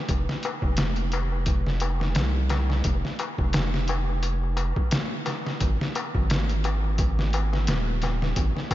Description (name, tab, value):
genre	trip hop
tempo	87 BPM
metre	4/4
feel	swing 56% on 16ths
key	F minor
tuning	A4 = 440 Hz
part	round analog bass	bass	0.1-8.5 s	Eb1 to C2	-25 LUFS	equal	none
part	trip hop sampler-style drum kit	drums	0.1-8.7 s	hi-hat, kick drum, snare drum	-26 LUFS	equal	overdrive
part	darbuka	percussion	0.1-8.7 s	none	-33 LUFS	left 3 dB	none
room	light reverb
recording	nothing above 7.6 kHz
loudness	-23 LUFS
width	side -14 dB against mid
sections	0.0-8.7 A section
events	none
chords	none